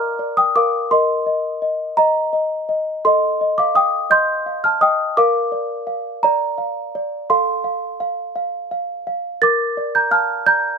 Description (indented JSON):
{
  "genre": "classical, lullaby for celesta",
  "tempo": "56 BPM (dotted quarters)",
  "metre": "6/8",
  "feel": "straight",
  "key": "Bb major",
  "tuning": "A4 = 441 Hz",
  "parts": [
    { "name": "small celesta", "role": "solo", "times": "0.0-10.8 s", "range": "A4 to A6", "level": "-16 LUFS", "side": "equal", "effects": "none" }
  ],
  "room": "little or no reverb",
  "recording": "close, detailed microphones",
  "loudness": "-16 LUFS",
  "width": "side -5 dB against mid",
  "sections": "0.0-10.8 A section",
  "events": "none",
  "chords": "0.0 Bb; 0.9 Cm7/Bb; 3.0 F7/A; 5.2 Bb; 7.3 F/A; 9.4 Bb"
}